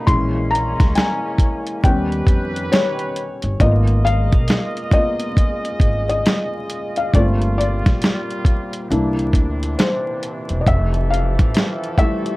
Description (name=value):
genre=lo-fi hip hop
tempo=68 BPM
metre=4/4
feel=swing 62% on 16ths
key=unclear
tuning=A4 = 436 Hz
part: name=felt-muted upright piano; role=accompaniment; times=0.0-12.4 s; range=E3 to B#5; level=-22 LUFS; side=left 2 dB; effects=low-pass filter
part: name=clear brass ensemble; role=sustained chords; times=0.0-12.4 s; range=Bb2 to D#5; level=-27 LUFS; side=right 1 dB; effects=low-pass filter
part: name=upright bass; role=bass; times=0.1-11.5 s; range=E1 to E#2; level=-20 LUFS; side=equal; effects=none
part: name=dusty soul sampler-style drum kit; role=drums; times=0.1-12.4 s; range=hi-hat, kick drum, snare drum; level=-16 LUFS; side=equal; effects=none
room=light reverb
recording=vinyl crackle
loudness=-16 LUFS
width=side -20 dB against mid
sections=0.0-3.6 A section; 3.6-12.4 B section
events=felt piano solo 0.0-3.6, 3.6-12.4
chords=0.1 A#m7b5; 1.8 D#7b13; 3.6 G#m69; 7.1 Gm11; 8.9 C9; 10.7 Fmaj9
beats=| 0.07 0.95 1.84 2.72 | 3.60 4.48 5.37 6.25 | 7.13 8.01 8.90 9.78 | 10.66 11.54